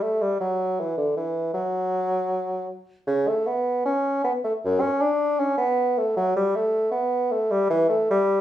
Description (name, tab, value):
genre	classical, baroque-style fantasia for unaccompanied bassoon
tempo	78 BPM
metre	4/4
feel	rubato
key	unclear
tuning	A4 = 440 Hz
part	mellow bassoon	solo	0.0-8.4 s	F#2 to D4	-21 LUFS	equal	none
room	moderate studio reverb, RT60 0.7 s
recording	studio reverb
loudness	-21 LUFS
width	side -12 dB against mid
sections	0.0-8.4 A section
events	none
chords	none